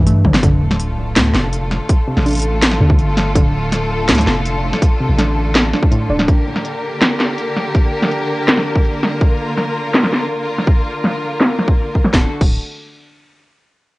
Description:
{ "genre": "half-time drum and bass", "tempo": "164 BPM", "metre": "4/4", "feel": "half-time", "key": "D minor", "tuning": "A4 = 439 Hz", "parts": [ { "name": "warbly dusty pluck", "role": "arpeggios", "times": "0.0-6.3 s", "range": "A2 to D4", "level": "-20 LUFS", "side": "right 1 dB", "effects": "chorus, cassette tape, tape echo" }, { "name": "long sustained 808-style bass", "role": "bass", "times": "0.0-6.3, 12.1-12.6 s", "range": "D1 to G2", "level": "-18 LUFS", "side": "equal", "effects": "tube saturation" }, { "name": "drum and bass drum kit", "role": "drums", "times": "0.1-12.5 s", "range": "crash cymbal, hi-hat, snare drum, toms", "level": "-16 LUFS", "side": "equal", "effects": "low-pass filter on hats, cassette tape, low-pass filter on snare, low-pass filter on toms, low-pass filter on cymbals, low-pass filter on room" }, { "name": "electronic kick drum", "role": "drums", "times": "0.2-12.5 s", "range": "none", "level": "-14 LUFS", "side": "equal", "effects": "cassette tape" }, { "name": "rich symphonic string section", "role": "sustained chords", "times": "0.4-12.3 s", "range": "D3 to Bb4", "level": "-21 LUFS", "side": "left 1 dB", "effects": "sidechain pumping, cassette tape" }, { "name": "sub drop", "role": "sound effects", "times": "0.4-1.9 s", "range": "none", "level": "-24 LUFS", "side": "equal", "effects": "none" } ], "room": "light reverb", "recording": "home recording on cassette, nothing above 10.4 kHz", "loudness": "-13 LUFS", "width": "side -21 dB against mid", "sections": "0.4-12.1 A section; 12.1-13.6 B section", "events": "drum fill 0.2; impact 0.4-1.9; filter sweep on drum 0.4-12.1", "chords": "0.4 Dm; 6.3 Gm; 12.1 D" }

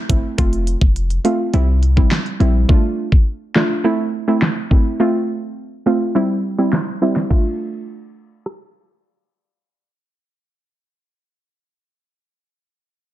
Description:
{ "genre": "dancehall", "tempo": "104 BPM", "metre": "4/4", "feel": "straight", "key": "D minor", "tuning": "A4 = 440 Hz", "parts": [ { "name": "soft round pluck", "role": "accompaniment", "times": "0.0-11.1 s", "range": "G3 to F4", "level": "-18 LUFS", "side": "right 1 dB", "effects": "chorus, sidechain pumping" }, { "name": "clean 808-style bass", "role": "bass", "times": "0.1-2.6 s", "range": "F1 to C2", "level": "-16 LUFS", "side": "equal", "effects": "none" }, { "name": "pop drum kit", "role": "drums", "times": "0.1-8.6 s", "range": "crash cymbal, handclaps, hi-hat, kick drum, rim click, snare drum", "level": "-16 LUFS", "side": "equal", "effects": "none" } ], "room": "light reverb", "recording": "dense, heavily limited modern master, low-pass filter", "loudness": "-15 LUFS", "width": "side -13 dB against mid", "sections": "0.0-7.3 A section; 7.3-9.6 B section", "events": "filter sweep 0.0-7.3", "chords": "0.4 F; 1.5 C; 2.7 Dm; 3.8 Am; 5.0 F; 6.2 C; 7.3 Dm" }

